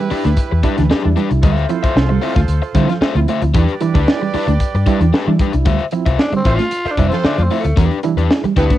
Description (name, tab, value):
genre	funk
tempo	114 BPM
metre	4/4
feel	straight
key	D dorian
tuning	A4 = 441 Hz
part	clear horn section	second line	0.0-8.7 s	E4 to D5	-26 LUFS	right 7 dB	cassette tape
part	crunchy overdriven guitar	accompaniment	0.0-8.7 s	D4 to E5	-21 LUFS	left 8 dB	cassette tape
part	mellow electric guitar	riff	0.0-8.8 s	E3 to A3	-20 LUFS	right 6 dB	analog chorus, cassette tape
part	barky reed electric piano	stabs	0.0-8.7 s	D3 to E4	-24 LUFS	right 8 dB	overdrive, fast tremolo, cassette tape
part	vintage muted fingered electric bass	bass	0.1-8.7 s	F1 to E3	-16 LUFS	equal	none
part	crisp fusion drum kit	drums	0.1-8.8 s	hi-hat, kick drum, snare drum	-17 LUFS	equal	cassette tape
part	growling tenor saxophone	melody	6.2-8.8 s	A3 to F4	-20 LUFS	left 1 dB	cassette tape
room	light reverb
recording	home recording on cassette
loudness	-13 LUFS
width	side -13 dB against mid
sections	0.0-5.7 A section; 5.7-8.8 B section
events	tenor saxophone solo 5.7-8.8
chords	0.0 Em7; 1.4 Dm9; 3.5 Em7; 5.7 Dm9; 7.8 Em7